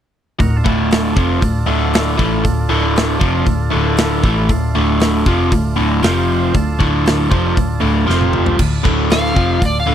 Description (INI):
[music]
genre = blues rock power trio and southern rock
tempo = 117 BPM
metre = 4/4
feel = straight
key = D minor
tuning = A4 = 440 Hz
[part]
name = overdriven tonewheel organ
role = sustained chords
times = 0.4-9.9 s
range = G3 to C5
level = -26 LUFS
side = right 5 dB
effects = wide subtle chorus
[part]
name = overdriven electric guitar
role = riff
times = 0.4-9.9 s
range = D2 to A3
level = -16 LUFS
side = equal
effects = none
[part]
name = vintage muted picked electric bass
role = bass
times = 0.4-9.9 s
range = D1 to A1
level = -19 LUFS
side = equal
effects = none
[part]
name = big rock drum kit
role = drums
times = 0.4-9.7 s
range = crash cymbal, hi-hat, kick drum, snare drum, toms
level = -18 LUFS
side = equal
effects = none
[part]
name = overdriven slide guitar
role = melody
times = 9.1-9.9 s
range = D5 to F5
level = -18 LUFS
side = left 1 dB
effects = none
[sound]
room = studio reverb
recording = dry, close 1970s-style studio recording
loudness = -13 LUFS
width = side -10 dB against mid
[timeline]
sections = 0.4-8.6 A section; 8.6-9.9 B section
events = drum fill 8.1-8.6; electric slide guitar solo 8.6-9.9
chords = 0.4 Dm; 6.0 F5; 6.5 Dm; 8.1 F5; 8.6 Dm